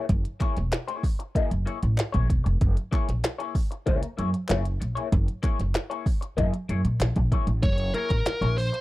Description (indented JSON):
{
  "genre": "funk",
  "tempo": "96 BPM",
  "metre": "4/4",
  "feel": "straight",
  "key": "F# mixolydian",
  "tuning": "A4 = 440 Hz",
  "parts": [
    { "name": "electric guitar through a small old amp", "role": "accompaniment", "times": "0.0-8.8 s", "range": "A#3 to D#5", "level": "-32 LUFS", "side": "left 6 dB", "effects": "wah" },
    { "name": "upright bass", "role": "bass", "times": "0.1-8.7 s", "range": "E1 to A#2", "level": "-25 LUFS", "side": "equal", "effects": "none" },
    { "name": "minimal click drum kit", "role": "drums", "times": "0.1-8.8 s", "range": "hi-hat, kick drum, snare drum", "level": "-25 LUFS", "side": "equal", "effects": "none" },
    { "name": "group handclap", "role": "percussion", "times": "0.4-8.4 s", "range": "none", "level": "-38 LUFS", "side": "left 2 dB", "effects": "none" },
    { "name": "high-gain lead guitar", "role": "melody", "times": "7.6-8.8 s", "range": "A#4 to C#5", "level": "-28 LUFS", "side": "equal", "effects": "distortion" }
  ],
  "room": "little or no reverb",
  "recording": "dry, close 1970s-style studio recording",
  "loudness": "-23 LUFS",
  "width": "side -17 dB against mid",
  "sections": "0.0-7.6 A section; 7.6-8.8 B section",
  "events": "lead electric guitar solo 7.6-8.8",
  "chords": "0.0 F#9"
}